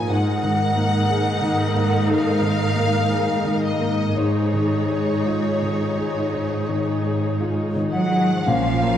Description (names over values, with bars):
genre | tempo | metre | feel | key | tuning
cinematic, emotional film score for orchestra | 55-61 BPM | 4/4 | rubato | Db major | A4 = 440 Hz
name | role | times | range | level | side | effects
rich studio violin section | melody | 0.0-9.0 s | F4 to Ab5 | -26 LUFS | left 2 dB | none
clear concert grand piano | accompaniment | 0.0-9.0 s | Ab2 to Ab4 | -23 LUFS | left 3 dB | none
warm symphonic viola section | accompaniment | 0.0-9.0 s | F3 to Bb4 | -27 LUFS | right 1 dB | none
rich symphonic cello section | bass | 0.0-9.0 s | Ab2 to Gb3 | -24 LUFS | right 3 dB | none
silver concert flute | second line | 7.9-9.0 s | F5 to Gb5 | -26 LUFS | left 1 dB | none
warm symphonic violin section | second line | 7.9-9.0 s | F5 to Gb5 | -24 LUFS | left 2 dB | none
mellow French horn section | sustained chords | 8.5-9.0 s | F3 to Db4 | -26 LUFS | left 3 dB | none
rich symphonic double bass section | bass | 8.5-9.0 s | Bb1 | -25 LUFS | right 7 dB | none
room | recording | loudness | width
moderate scoring stage reverb, RT60 1.9 s | dark, warm production | -18 LUFS | side -10 dB against mid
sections
0.0-8.5 A section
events
none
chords
0.1 Absus2; 4.2 Dbadd9/Ab; 8.5 Bbm